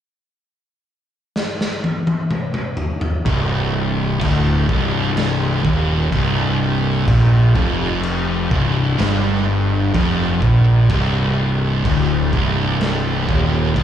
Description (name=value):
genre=stoner and doom metal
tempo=63 BPM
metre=4/4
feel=straight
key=C minor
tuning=A4 = 440 Hz
part: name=raw garage drum kit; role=drums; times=1.4-13.8 s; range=crash cymbal, kick drum, snare drum, toms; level=-23 LUFS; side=left 1 dB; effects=none
part: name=crunchy overdriven guitar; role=riff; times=3.3-13.8 s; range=C2 to Bb2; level=-24 LUFS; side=equal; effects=none
part: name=thick fuzz guitar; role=riff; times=3.3-13.8 s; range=C2 to Bb2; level=-21 LUFS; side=left 6 dB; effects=distortion
part: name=thick fuzz guitar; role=riff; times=3.3-13.8 s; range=C2 to Bb2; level=-20 LUFS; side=right 7 dB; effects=distortion
part: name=fuzz picked electric bass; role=bass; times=3.3-13.8 s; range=C1 to Bb1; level=-21 LUFS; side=left 1 dB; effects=overdrive
room=little or no reverb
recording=live gig heard through the venue's PA, club reverb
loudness=-15 LUFS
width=side -10 dB against mid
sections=0.0-3.3 A section; 3.3-13.8 B section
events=drum fill 1.4-3.3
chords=0.0 N.C.; 3.3 Cm